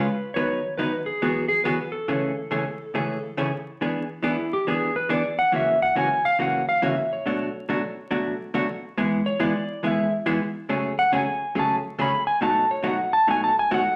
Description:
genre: country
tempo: 139 BPM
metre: 4/4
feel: swing 65% on 8ths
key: unclear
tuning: A4 = 439 Hz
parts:
  - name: clean lap steel guitar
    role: melody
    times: 0.0-14.0 s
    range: E4 to B5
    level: -26 LUFS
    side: equal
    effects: none
  - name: vintage hollow-body jazz guitar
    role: accompaniment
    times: 0.0-13.8 s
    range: F#2 to B4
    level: -27 LUFS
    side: equal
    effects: none
room: wet large studio reverb, RT60 0.8 s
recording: vinyl crackle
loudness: -24 LUFS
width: mono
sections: 0.0-3.8 A section; 3.8-14.0 B section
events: electric slide guitar solo 3.8-14.0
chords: 0.4 B/D#; 1.2 Eadd9; 2.1 Amaj7; 3.8 E7; 5.5 F#7; 7.3 Bm7; 9.0 E; 10.7 F#madd9; 12.4 B7

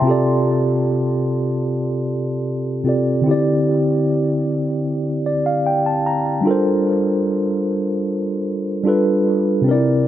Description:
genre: R&B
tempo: 75 BPM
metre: 4/4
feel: straight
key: G dorian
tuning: A4 = 440 Hz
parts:
  - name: mellow tine electric piano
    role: solo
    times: 0.0-10.1 s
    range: C3 to C6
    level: -16 LUFS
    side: equal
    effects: medium stereo tremolo, tape echo
room: light reverb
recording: echo-heavy mix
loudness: -16 LUFS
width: side -12 dB against mid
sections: 0.0-6.5 A section; 6.5-10.1 B section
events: tine electric piano fill 4.9-6.5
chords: 0.1 F69/C; 3.3 D9sus4; 6.5 Gm11; 8.9 G7

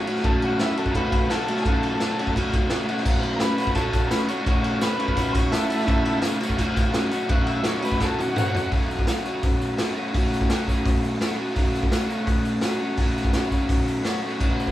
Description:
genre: garage rock duo or trio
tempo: 169 BPM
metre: 4/4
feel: straight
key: F# minor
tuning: A4 = 440 Hz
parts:
  - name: crunchy overdriven guitar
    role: riff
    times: 0.0-14.7 s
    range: F#2 to F#4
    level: -24 LUFS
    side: equal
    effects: none
  - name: raw garage drum kit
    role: drums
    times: 0.1-14.7 s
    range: crash cymbal, hi-hat, kick drum, ride cymbal, snare drum, toms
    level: -24 LUFS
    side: equal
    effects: none
  - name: overdriven combo organ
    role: melody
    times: 0.2-8.7 s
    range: E4 to F#5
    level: -28 LUFS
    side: equal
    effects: none
  - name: tambourine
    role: percussion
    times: 3.1-14.7 s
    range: none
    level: -43 LUFS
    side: left 3 dB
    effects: none
room: moderate small room reverb, RT60 0.5 s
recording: band playing live in one room, small room ambience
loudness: -20 LUFS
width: side -14 dB against mid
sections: 0.0-8.7 A section; 8.7-14.7 B section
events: transistor combo organ solo 0.0-8.7; drum fill 8.0-8.7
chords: 0.0 F#m

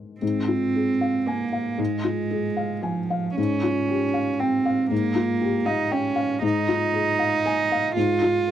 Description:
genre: neoclassical piano and strings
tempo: 117 BPM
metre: 3/4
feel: rubato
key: Ab major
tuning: A4 = 443 Hz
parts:
  - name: felt-muted upright piano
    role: accompaniment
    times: 0.0-8.5 s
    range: Ab2 to Ab5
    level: -25 LUFS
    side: left 5 dB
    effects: none
  - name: warm cello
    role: second line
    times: 0.2-8.5 s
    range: F3 to F4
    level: -23 LUFS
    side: right 5 dB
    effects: none
room: little or no reverb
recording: dry, close 1970s-style studio recording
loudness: -21 LUFS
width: side -10 dB against mid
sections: 0.2-8.5 A section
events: none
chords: 0.2 Ab6; 3.4 Abmaj7sus2; 6.4 Fm7/Ab

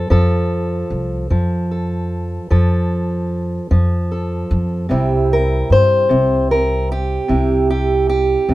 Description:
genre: acoustic country blues, solo or duo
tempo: 50 BPM (dotted quarters)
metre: 12/8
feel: straight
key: unclear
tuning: A4 = 441 Hz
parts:
  - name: fingerpicked steel-string acoustic guitar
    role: melody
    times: 0.0-8.5 s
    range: C3 to C5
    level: -17 LUFS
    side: right 1 dB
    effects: none
  - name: upright bass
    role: bass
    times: 0.0-8.5 s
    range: C2 to G2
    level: -18 LUFS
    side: equal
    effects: none
room: light reverb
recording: minimal, uncompressed stereo recording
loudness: -15 LUFS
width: side -16 dB against mid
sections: 0.0-8.5 A section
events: none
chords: 0.0 F; 4.9 C

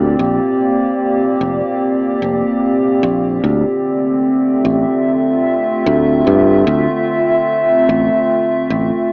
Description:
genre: ambient dub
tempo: 74 BPM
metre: 4/4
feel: swing 54% on 16ths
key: D minor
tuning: A4 = 441 Hz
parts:
  - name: warbly tape-like pad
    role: sustained chords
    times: 0.0-9.1 s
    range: Bb2 to E5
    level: -16 LUFS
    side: equal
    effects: chorus, built-in reverb
  - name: fingered electric bass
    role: bass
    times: 0.0-8.9 s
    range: F1 to G2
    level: -18 LUFS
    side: equal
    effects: none
room: moderate echo chamber reverb, RT60 2.1 s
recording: AM radio sound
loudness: -15 LUFS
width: mono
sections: 0.0-9.1 A section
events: none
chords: 0.0 Bb6; 3.4 Dm7

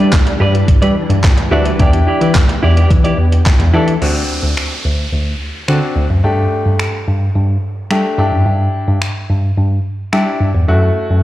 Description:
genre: dance-pop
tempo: 108 BPM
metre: 4/4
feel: straight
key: E minor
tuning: A4 = 438 Hz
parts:
  - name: clear baby grand piano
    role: accompaniment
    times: 0.0-11.2 s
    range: A3 to A4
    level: -19 LUFS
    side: left 2 dB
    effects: sidechain pumping
  - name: soft string machine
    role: sustained chords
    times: 0.0-4.0 s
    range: E3 to G4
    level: -21 LUFS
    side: left 1 dB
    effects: ensemble chorus, sidechain pumping
  - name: clean electric guitar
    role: riff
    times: 0.0-3.9 s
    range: E4 to D5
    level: -20 LUFS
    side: right 3 dB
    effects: lush chorus
  - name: bell-like tine electric piano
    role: bass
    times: 0.0-11.2 s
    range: D2 to G3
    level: -14 LUFS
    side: equal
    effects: sidechain pumping
  - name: gated 80s digital drum machine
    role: drums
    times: 0.1-10.3 s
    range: crash cymbal, finger snaps, handclaps, hi-hat, kick drum, snare drum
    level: -15 LUFS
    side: equal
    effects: gated reverb, gated reverb snare
  - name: downlifter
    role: sound effects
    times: 4.0-8.5 s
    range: none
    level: -27 LUFS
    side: right 1 dB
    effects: none
room: light reverb, digital ambience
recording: played on a big sound system in a bare room, large studio reverb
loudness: -12 LUFS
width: side -14 dB against mid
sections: 0.0-4.0 A section; 4.0-11.2 B section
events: none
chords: 0.0 Em7/G; 1.8 Em7; 4.0 D7; 6.2 Gsus2; 8.2 Em7; 10.7 F#m7

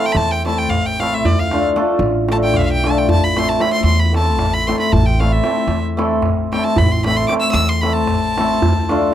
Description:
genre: balkan folk, Balkan wedding band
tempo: 228 BPM (eighths)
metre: 7/8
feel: straight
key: A minor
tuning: A4 = 439 Hz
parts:
  - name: clear violin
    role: melody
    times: 0.0-9.1 s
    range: D5 to E6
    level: -20 LUFS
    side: left 1 dB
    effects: none
  - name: cimbalom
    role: accompaniment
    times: 0.0-9.1 s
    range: A3 to A4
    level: -18 LUFS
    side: left 1 dB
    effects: none
  - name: darbuka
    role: percussion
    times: 0.0-9.1 s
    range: none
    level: -21 LUFS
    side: right 1 dB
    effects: none
  - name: upright bass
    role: bass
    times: 0.1-9.1 s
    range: A1 to E2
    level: -20 LUFS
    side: equal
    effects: none
room: light reverb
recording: dry, close 1970s-style studio recording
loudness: -14 LUFS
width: side -11 dB against mid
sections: 0.0-9.1 A section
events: violin solo 0.0-9.1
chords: 0.0 Am; 1.2 Dm; 3.1 Am; 8.6 Dm

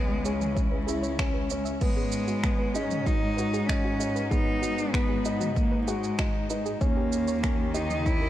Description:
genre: piano and strings electronica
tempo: 96 BPM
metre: 4/4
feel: straight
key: G# minor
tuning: A4 = 440 Hz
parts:
  - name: rich cello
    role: melody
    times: 0.0-8.3 s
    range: G#3 to E4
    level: -30 LUFS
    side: equal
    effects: none
  - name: dark string quartet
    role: sustained chords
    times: 0.0-8.3 s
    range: C#3 to D#5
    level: -37 LUFS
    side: left 2 dB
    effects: none
  - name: felt-muted upright piano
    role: riff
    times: 0.0-8.3 s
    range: B3 to F#4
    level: -33 LUFS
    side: left 1 dB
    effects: digital delay
  - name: rich studio cello section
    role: bass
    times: 0.0-8.3 s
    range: C#2 to G#2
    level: -33 LUFS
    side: left 1 dB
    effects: sidechain pumping
  - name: soft round pluck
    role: arpeggios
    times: 0.2-8.3 s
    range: F#4 to E5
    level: -38 LUFS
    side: right 5 dB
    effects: chorus, sidechain pumping, digital delay
  - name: organic electronic drum kit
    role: drums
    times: 0.3-8.2 s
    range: crash cymbal, finger snaps, shaker, toms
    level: -36 LUFS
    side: right 2 dB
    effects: studio reverb
  - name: electronic kick drum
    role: drums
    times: 0.6-8.2 s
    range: none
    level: -28 LUFS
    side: equal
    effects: overdrive, studio reverb
room: light reverb, small room ambience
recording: dark, warm production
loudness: -24 LUFS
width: side -13 dB against mid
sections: 0.0-8.3 A section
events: none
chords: 0.0 C#m7; 1.8 G#m7; 6.8 D#7

